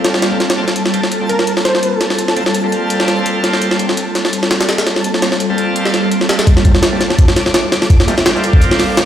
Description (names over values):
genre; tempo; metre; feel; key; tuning
drum and bass, jungle; 168 BPM; 4/4; swing 54% on 16ths; G minor; A4 = 440 Hz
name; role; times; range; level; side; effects
ethereal airy pad; sustained chords; 0.0-9.1 s; G3 to A4; -19 LUFS; equal; ensemble chorus, built-in reverb
bright tonewheel organ; stabs; 0.0-9.1 s; G3 to A4; -21 LUFS; right 1 dB; overdrive, slow rotary speaker, low-pass filter, dub echo
jungle sampler-style drum kit; drums; 0.0-9.1 s; hi-hat, kick drum, snare drum; -13 LUFS; equal; high-pass filter on hats, studio reverb, high-pass filter on snare, high-pass filter on kick
twinkling granular texture; texture; 0.0-9.1 s; A5 to D6; -25 LUFS; equal; built-in reverb
plucky unison lead; melody; 1.3-2.0 s; Bb4 to C5; -21 LUFS; equal; dub echo
crunchy breakbeat drum kit; drums; 6.5-9.1 s; hi-hat, shaker, snare drum; -25 LUFS; right 1 dB; high-pass filter on hats, studio reverb, high-pass filter on snare, high-pass filter on perc, high-pass filter on room
room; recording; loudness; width
wet echo chamber reverb, RT60 1.6 s; played on a big sound system in a bare room, stone room reverb; -11 LUFS; side -10 dB against mid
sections
0.0-6.5 A section; 6.5-9.1 B section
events
build-up 6.5-9.1; filter sweep on tonewheel organ 6.5-9.1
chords
0.0 Gm11